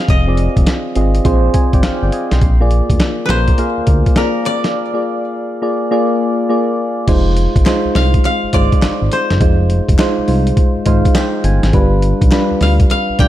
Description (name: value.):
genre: R&B, new jack swing.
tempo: 103 BPM.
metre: 4/4.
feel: swing 66% on 16ths.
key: unclear.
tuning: A4 = 439 Hz.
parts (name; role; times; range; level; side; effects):
koto; melody; 0.0-13.3 s; Bb4 to G5; -20 LUFS; left 2 dB; none.
soft electric-piano-like synth keys; accompaniment; 0.0-13.3 s; G3 to C6; -17 LUFS; equal; chorus.
smooth synth bass; bass; 0.1-13.3 s; F1 to D2; -15 LUFS; equal; none.
boom bap sampler-style drum kit; drums; 0.1-13.3 s; crash cymbal, hi-hat, kick drum, snare drum; -14 LUFS; equal; none.
group handclap; percussion; 7.7-12.5 s; none; -33 LUFS; left 3 dB; none.
room: light reverb, digital ambience.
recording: dark, warm production.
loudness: -12 LUFS.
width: side -13 dB against mid.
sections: 0.0-7.1 A section; 7.1-13.3 B section.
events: break 4.7-7.1; synth keys fill 10.6-11.7.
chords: 0.0 Fm7; 2.4 Bb7; 7.1 Fm7; 11.7 G7.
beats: | 0.09 0.67 1.25 1.83 | 2.42 3.00 3.58 4.16 | 4.75 5.33 5.91 6.49 | 7.08 7.66 8.24 8.82 | 9.41 9.99 10.57 11.15 | 11.74 12.32 12.90.